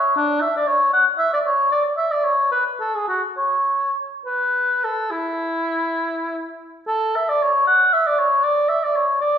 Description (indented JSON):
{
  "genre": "classical, baroque-style fantasia for unaccompanied oboe",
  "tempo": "61-79 BPM (dotted quarters)",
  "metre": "12/8",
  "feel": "rubato",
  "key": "unclear",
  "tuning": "A4 = 440 Hz",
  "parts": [
    { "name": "mellow oboe", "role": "solo", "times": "0.0-9.4 s", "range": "D4 to F#5", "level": "-17 LUFS", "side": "equal", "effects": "none" }
  ],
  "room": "wet recital hall reverb, RT60 1.4 s",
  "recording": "heard from further back in the room, nothing above 10.7 kHz",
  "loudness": "-17 LUFS",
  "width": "side -8 dB against mid",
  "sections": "0.0-6.9 A section; 6.9-9.4 A section",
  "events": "none",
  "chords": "none"
}